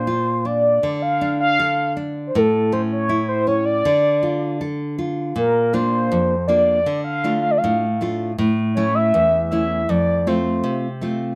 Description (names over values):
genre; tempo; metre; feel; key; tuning
andean folk, Andean ensemble; 80 BPM; 2/4; straight; D minor; A4 = 440 Hz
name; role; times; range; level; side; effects
mellow horn-like synth lead; melody; 0.0-11.0 s; A4 to F5; -21 LUFS; equal; chorus, phaser
nylon-string guitar; accompaniment; 0.0-11.4 s; E2 to A4; -23 LUFS; equal; none
room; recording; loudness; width
light reverb; close, detailed microphones; -20 LUFS; mono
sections
0.0-5.4 A section; 5.4-11.4 A section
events
none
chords
0.0 Bb; 0.8 D5; 2.3 A; 3.9 Dm; 5.4 Bb; 6.9 Dm; 8.4 A; 9.9 F